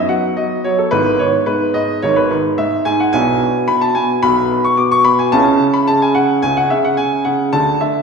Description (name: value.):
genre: classical-period piano sonatina.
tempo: 109 BPM.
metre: 4/4.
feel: rubato.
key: E major.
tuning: A4 = 440 Hz.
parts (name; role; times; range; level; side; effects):
warm baby grand piano; solo; 0.0-8.0 s; G#1 to D6; -12 LUFS; equal; none.
room: wet recital hall reverb, RT60 1.3 s.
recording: recorded in a church or concert hall.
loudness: -12 LUFS.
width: side -5 dB against mid.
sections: 0.0-8.0 A section.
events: none.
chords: 0.0 B/F#; 0.9 E/G#; 3.1 E7/B; 5.3 C#madd11.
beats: 0.37 | 0.93 1.48 2.03 2.58 | 3.13 3.67 4.23 4.77 | 5.32 5.88 6.43 6.98 | 7.53.